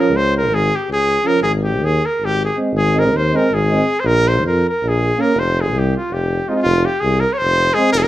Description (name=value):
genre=balkan folk, Balkan brass band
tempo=321 BPM (eighths)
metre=7/8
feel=straight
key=F minor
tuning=A4 = 440 Hz
part: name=clear trumpet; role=melody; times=0.0-8.1 s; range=Eb4 to Db5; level=-17 LUFS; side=equal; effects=plate reverb
part: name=clear trombone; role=accompaniment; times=0.0-7.9 s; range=F3 to Bb3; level=-23 LUFS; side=right 2 dB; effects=none
part: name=mellow euphonium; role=accompaniment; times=0.0-7.9 s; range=C4 to Db4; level=-21 LUFS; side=right 1 dB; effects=none
part: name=warm tuba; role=bass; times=0.1-8.1 s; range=F1 to F2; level=-18 LUFS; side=equal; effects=none
room=wet small room reverb, RT60 0.5 s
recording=heard from further back in the room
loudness=-14 LUFS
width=side -14 dB against mid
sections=0.0-6.6 A section; 6.6-8.1 B section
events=none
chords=0.1 Db5; 1.4 Ab; 4.0 Bb5; 5.3 F5; 6.6 Fm